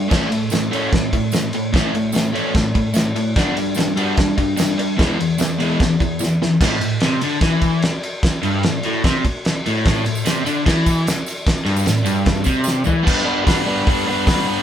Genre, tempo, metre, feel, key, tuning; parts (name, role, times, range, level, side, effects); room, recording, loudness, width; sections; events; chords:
garage rock duo or trio; 148 BPM; 4/4; straight; A mixolydian; A4 = 440 Hz
crunchy overdriven guitar; riff; 0.0-14.6 s; E2 to B4; -18 LUFS; equal
cloth-damped thuddy drum kit; drums; 0.1-14.4 s; crash cymbal, hi-hat, kick drum, ride cymbal, snare drum, toms; -19 LUFS; equal
tambourine; percussion; 0.5-6.3, 9.9-12.9 s; -32 LUFS; right 5 dB
light reverb; band playing live in one room; -16 LUFS; side -10 dB against mid
0.0-6.6 A section; 6.6-13.1 B section; 13.1-14.6 C section
drum fill 6.2-6.6, 12.7-13.1
0.1 A; 3.4 G; 5.0 E; 6.6 A5; 13.1 G